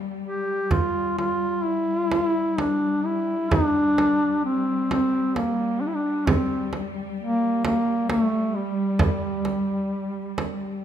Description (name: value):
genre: caucasian folk, Caucasian lament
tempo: 65 BPM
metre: 3/4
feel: rubato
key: G dorian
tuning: A4 = 441 Hz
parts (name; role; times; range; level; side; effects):
- dark studio cello section; drone; 0.0-10.8 s; G3; -31 LUFS; left 4 dB; none
- mellow duduk; melody; 0.3-10.8 s; G3 to G4; -23 LUFS; equal; none
- frame drum; percussion; 0.7-10.6 s; none; -26 LUFS; right 2 dB; none
room: light reverb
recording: minimal, uncompressed stereo recording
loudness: -21 LUFS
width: side -9 dB against mid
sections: 0.0-10.8 A section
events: none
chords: none